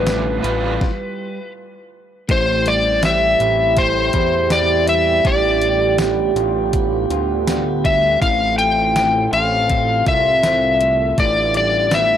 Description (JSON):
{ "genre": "dream pop", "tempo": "81 BPM", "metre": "4/4", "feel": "straight", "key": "A minor", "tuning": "A4 = 441 Hz", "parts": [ { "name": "overdriven slide guitar", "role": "melody", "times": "0.0-12.2 s", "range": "B4 to G5", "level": "-16 LUFS", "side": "left 2 dB", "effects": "analog delay" }, { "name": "crunchy overdriven guitar", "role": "accompaniment", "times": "0.0-0.8 s", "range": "A2 to B4", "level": "-26 LUFS", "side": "right 5 dB", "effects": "tremolo, analog chorus" }, { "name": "dark brass ensemble", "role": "sustained chords", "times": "0.0-12.2 s", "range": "C3 to A4", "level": "-23 LUFS", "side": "right 8 dB", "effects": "stereo widening" }, { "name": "electric guitar at the edge of break-up", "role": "arpeggios", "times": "0.0-12.2 s", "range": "A2 to F4", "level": "-25 LUFS", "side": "left 2 dB", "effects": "wide subtle chorus, analog delay" }, { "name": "fat analog bass", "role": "bass", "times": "0.0-12.2 s", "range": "A1 to E2", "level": "-23 LUFS", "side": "equal", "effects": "tube saturation" }, { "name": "detuned 8-bit digital drum machine", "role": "drums", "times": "0.1-12.1 s", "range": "hi-hat, kick drum, snare drum, tambourine", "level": "-22 LUFS", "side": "equal", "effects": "overdrive" } ], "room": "little or no reverb", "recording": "dry, gritty hardware recording, transformer saturation", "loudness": "-14 LUFS", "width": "side -10 dB against mid", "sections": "0.0-2.3 A section; 2.3-12.2 A section", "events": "stop 0.8-2.3", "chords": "0.0 G7/A; 2.3 Am7; 5.3 G7/A; 8.2 F/A; 11.2 G7/A", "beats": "0.07 0.81 1.55 | 2.29 3.03 3.77 4.51 | 5.25 6.00 6.74 7.48 | 8.22 8.96 9.70 10.44 | 11.18 11.92" }